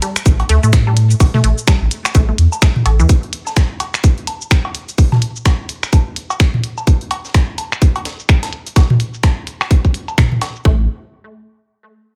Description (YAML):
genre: minimal techno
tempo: 127 BPM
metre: 4/4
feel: swing 59% on 16ths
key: unclear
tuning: A4 = 440 Hz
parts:
  - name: resonant blip pluck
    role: riff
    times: 0.0-3.0, 10.7-10.9 s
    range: E3 to A4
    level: -26 LUFS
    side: equal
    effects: chorus, sidechain pumping, tape echo
  - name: breakbeat sampler-style drum kit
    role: drums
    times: 0.0-10.5 s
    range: hi-hat, snare drum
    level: -33 LUFS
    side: equal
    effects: high-pass filter on snare, studio reverb, high-pass filter on hats
  - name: minimal click drum kit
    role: drums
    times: 0.0-10.6 s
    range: finger snaps, hi-hat, shaker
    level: -23 LUFS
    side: equal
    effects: low-pass filter on snare, studio reverb, low-pass filter on hats, low-pass filter on perc
  - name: electronic woodblock, cowbell and toms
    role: percussion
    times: 0.0-10.5 s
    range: none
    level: -21 LUFS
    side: equal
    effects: overdrive, studio reverb
  - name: saturated sub bass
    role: bass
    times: 0.3-3.1, 10.7-10.9 s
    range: A1 to A2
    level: -15 LUFS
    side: equal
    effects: tube saturation, sidechain pumping
  - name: electronic kick drum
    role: drums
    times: 0.3-10.8 s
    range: none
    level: -15 LUFS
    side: equal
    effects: studio reverb
room: little or no reverb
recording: none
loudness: -15 LUFS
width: mono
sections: 0.0-10.7 A section; 10.7-12.2 B section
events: none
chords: 0.0 A5; 10.7 N.C.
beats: 0.26 0.73 | 1.20 1.68 2.15 2.62 | 3.09 3.56 4.04 4.51 | 4.98 5.46 5.93 6.40 | 6.87 7.34 7.82 8.29 | 8.76 9.23 9.71 10.18 | 10.65